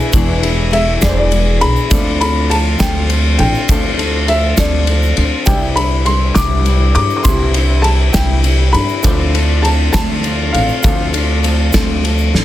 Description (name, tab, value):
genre	indie folk with a building arrangement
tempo	67 BPM (dotted quarters)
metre	6/8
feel	straight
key	unclear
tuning	A4 = 440 Hz
part	dark upright piano	melody	0.0-12.0 s	C5 to D6	-19 LUFS	left 1 dB	none
part	bright upright piano	accompaniment	0.0-12.4 s	C2 to D5	-26 LUFS	equal	none
part	picked steel-string acoustic guitar	accompaniment	0.0-12.4 s	C3 to A4	-22 LUFS	left 6 dB	none
part	clear brass ensemble	sustained chords	0.0-12.4 s	D3 to F4	-26 LUFS	equal	none
part	upright bass	bass	0.1-12.4 s	E1 to G2	-15 LUFS	equal	none
part	loose indie drum kit	drums	0.1-12.4 s	kick drum, ride cymbal, snare drum	-16 LUFS	equal	none
part	egg shaker	percussion	0.1-12.3 s	none	-28 LUFS	right 9 dB	none
room	small room ambience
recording	dense, heavily limited modern master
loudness	-11 LUFS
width	side -13 dB against mid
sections	0.0-12.4 A section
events	none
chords	0.0 E7; 1.9 Dm7; 5.5 Cadd9; 9.0 Dm7